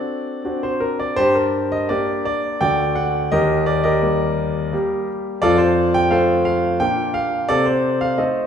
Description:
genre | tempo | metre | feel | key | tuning
classical-period piano sonatina | 85 BPM | 3/4 | rubato | G minor | A4 = 439 Hz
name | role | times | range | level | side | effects
warm concert grand piano | solo | 0.0-8.5 s | D2 to G5 | -17 LUFS | equal | none
room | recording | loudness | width
wet recital hall reverb, RT60 1.4 s | heard from further back in the room | -17 LUFS | side -8 dB against mid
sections
0.0-8.5 A section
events
none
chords
0.0 D7; 1.2 Gm; 2.6 D; 3.3 Eb; 5.4 F; 6.8 Bb; 7.5 Adim/C

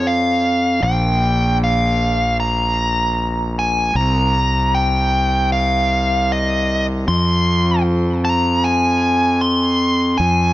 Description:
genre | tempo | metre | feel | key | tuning
post-rock | 77 BPM | 4/4 | straight | F minor | A4 = 440 Hz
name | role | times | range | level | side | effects
dark smooth lead guitar | melody | 0.0-10.5 s | Eb5 to C6 | -18 LUFS | equal | overdrive, digital delay
fuzz fingered electric bass | bass | 0.0-10.5 s | Bb1 to F2 | -17 LUFS | equal | overdrive
room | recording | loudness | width
little or no reverb | dark, warm production, nothing above 8.0 kHz | -15 LUFS | side -15 dB against mid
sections
0.0-10.5 A section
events
none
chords
0.0 N.C.; 0.8 Bb5; 4.0 C5; 7.1 Fm

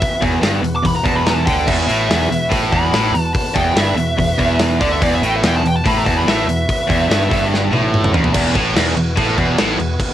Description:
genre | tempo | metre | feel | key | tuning
hard rock | 144 BPM | 4/4 | straight | E minor | A4 = 440 Hz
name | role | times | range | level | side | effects
smooth overdriven lead guitar | melody | 0.0-7.5 s | D5 to D6 | -20 LUFS | equal | none
overdriven tonewheel organ | sustained chords | 0.0-10.1 s | E3 to F#4 | -28 LUFS | equal | slow rotary speaker
gated 80s drum kit | drums | 0.0-10.1 s | crash cymbal, hi-hat, kick drum, snare drum, toms | -19 LUFS | equal | cassette tape
distorted electric guitar | riff | 0.2-9.9 s | E2 to D3 | -20 LUFS | right 6 dB | overdrive
tight distorted guitar | riff | 0.2-9.9 s | E2 to D3 | -21 LUFS | left 7 dB | distortion
overdriven picked electric bass | bass | 0.2-10.0 s | E1 to D2 | -22 LUFS | equal | none
distorted electric guitar | riff | 1.7-9.9 s | E2 to D3 | -25 LUFS | equal | none
room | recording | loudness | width
light reverb | home recording on cassette | -13 LUFS | side -12 dB against mid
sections
0.0-8.3 A section; 8.3-10.1 B section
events
lead electric guitar solo 0.0-8.3; drum fill 7.5-8.3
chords
0.0 Em; 8.3 E5

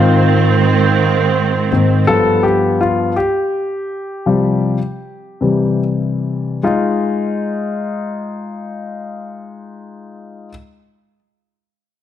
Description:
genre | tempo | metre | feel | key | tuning
pop | 47-56 BPM (dotted quarters) | 6/8 | straight | F minor | A4 = 440 Hz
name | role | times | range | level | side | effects
clear grand piano | accompaniment | 0.0-10.5 s | G2 to A4 | -15 LUFS | left 2 dB | none
clear studio string section | sustained chords | 0.0-2.0 s | Ab2 to C4 | -15 LUFS | right 7 dB | none
room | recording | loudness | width
light reverb, small room ambience | none | -13 LUFS | side -10 dB against mid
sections
0.0-6.7 A section; 6.7-11.8 B section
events
grand piano solo 0.0-6.7; slowing down 2.1-6.7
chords
0.0 Ab; 2.1 G7; 4.3 Csus4; 5.4 C; 6.7 Fm7

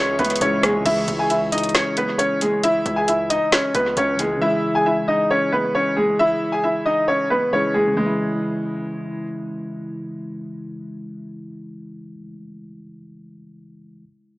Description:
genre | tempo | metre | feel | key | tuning
hip hop, trap | 135 BPM | 4/4 | half-time | C# minor | A4 = 440 Hz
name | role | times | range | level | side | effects
clear concert grand piano | melody | 0.0-9.3 s | G#3 to G#5 | -19 LUFS | equal | dub echo
tine electric piano | accompaniment | 0.0-14.0 s | C#3 to G#4 | -28 LUFS | equal | analog chorus, dub echo
glassy FM pad | sustained chords | 0.0-0.8 s | G#4 to C#6 | -33 LUFS | left 1 dB | ensemble chorus, built-in reverb
distorted 808-style bass | bass | 0.0-4.4 s | C#2 to E2 | -30 LUFS | equal | distortion
trap drum kit | drums | 0.2-4.3 s | crash cymbal, hi-hat, rim click, snare drum | -23 LUFS | equal | dub echo
room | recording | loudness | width
light reverb | echo-heavy mix, small speaker sound | -18 LUFS | side -20 dB against mid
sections
0.9-8.0 A section; 8.0-11.5 B section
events
none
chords
0.0 C#m

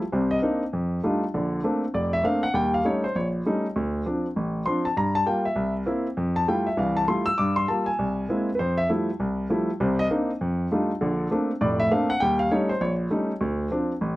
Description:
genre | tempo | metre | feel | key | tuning
jazz | 198 BPM | 4/4 | swing 62% on 8ths | F major | A4 = 440 Hz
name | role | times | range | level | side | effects
warm grand piano | solo | 0.1-14.2 s | F1 to E6 | -22 LUFS | equal | none
room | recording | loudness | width
light reverb | close, detailed microphones | -22 LUFS | side -17 dB against mid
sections
0.0-8.6 A section; 8.6-14.2 A section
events
none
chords
0.1 Cm9; 0.7 F13; 1.3 Bbmaj9; 2.5 Eb7#11; 3.7 Dm7; 5.0 Gm7; 5.6 C7; 6.2 Fmaj9; 7.4 Gm7; 8.0 Caug7; 8.6 Fmaj9; 9.8 Cm9; 10.4 F13; 11.0 Bbmaj9; 12.2 Eb7#11; 13.4 Dm7

